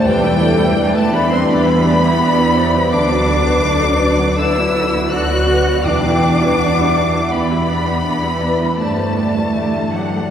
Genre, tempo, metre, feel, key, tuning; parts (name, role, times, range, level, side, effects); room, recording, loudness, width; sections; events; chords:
cinematic; 82 BPM; 4/4; rubato; E minor; A4 = 442 Hz
warm studio violin section; melody; 0.0-10.3 s; G4 to D5; -28 LUFS; left 1 dB
warm violin; melody; 0.0-10.3 s; F#5 to F#6; -23 LUFS; left 3 dB
hollow large flute ensemble; second line; 0.0-10.3 s; A4 to G5; -22 LUFS; left 1 dB
rich studio violin section; second line; 0.0-10.3 s; F#5 to F#6; -22 LUFS; equal
warm studio viola section; accompaniment; 0.0-10.3 s; D3 to E4; -22 LUFS; right 1 dB
concert harp; arpeggios; 0.0-10.3 s; G2 to B5; -23 LUFS; left 3 dB
warm studio cello section; bass; 0.0-10.3 s; F#3 to F#4; -19 LUFS; right 2 dB
mellow French horn section; sustained chords; 0.1-10.3 s; E3 to D4; -25 LUFS; left 2 dB
clear studio double bass section; bass; 0.1-10.3 s; D2 to G2; -21 LUFS; right 1 dB
timpani; percussion; 0.1-1.1, 5.8-6.9 s; E2; -26 LUFS; left 1 dB
wet cathedral reverb, RT60 4.1 s; recorded in a church or concert hall; -13 LUFS; side -9 dB against mid
0.0-10.3 A section
0.1 Em7; 2.9 Bm/D; 5.8 Em7; 8.8 Gsus2